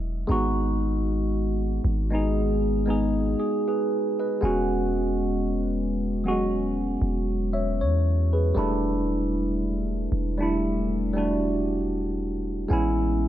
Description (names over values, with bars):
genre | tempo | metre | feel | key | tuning
contemporary R&B | 58 BPM | 4/4 | swing 54% on 16ths | E major | A4 = 440 Hz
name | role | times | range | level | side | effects
tine electric piano | accompaniment | 0.0-13.3 s | F#3 to E5 | -25 LUFS | equal | phaser
long sustained 808-style bass | bass | 0.0-13.3 s | E1 to E2 | -27 LUFS | equal | none
room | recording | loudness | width
light reverb | none | -23 LUFS | side -12 dB against mid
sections
0.3-13.3 A section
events
none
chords
0.3 G#m7; 4.4 E69; 8.6 Em11; 12.7 Amaj9